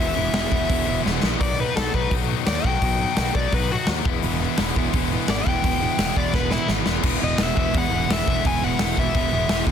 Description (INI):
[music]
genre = punk rock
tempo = 170 BPM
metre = 4/4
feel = straight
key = E major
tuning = A4 = 437 Hz
[part]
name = overdriven electric guitar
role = melody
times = 0.0-9.6 s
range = E4 to G#5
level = -25 LUFS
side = left 3 dB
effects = none
[part]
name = overdriven semi-hollow guitar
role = riff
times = 0.0-1.4, 4.2-9.7 s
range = E2 to E3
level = -27 LUFS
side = right 16 dB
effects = none
[part]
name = tight distorted guitar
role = riff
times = 0.0-9.7 s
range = B2 to E4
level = -27 LUFS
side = left 17 dB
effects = distortion
[part]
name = fuzz picked electric bass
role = bass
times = 0.0-9.7 s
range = E1 to E2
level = -27 LUFS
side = equal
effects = overdrive
[part]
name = big rock drum kit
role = drums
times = 0.3-9.7 s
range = crash cymbal, hi-hat, kick drum, snare drum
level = -23 LUFS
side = equal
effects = none
[sound]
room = little or no reverb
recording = dense, heavily limited modern master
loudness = -19 LUFS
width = side -8 dB against mid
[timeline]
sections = 0.0-1.4 A section; 1.4-7.0 B section; 7.0-9.7 A section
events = drum fill 1.1-1.4, 6.3-7.0; overdriven electric guitar solo 1.4-7.0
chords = 0.0 E; 1.4 B; 4.1 E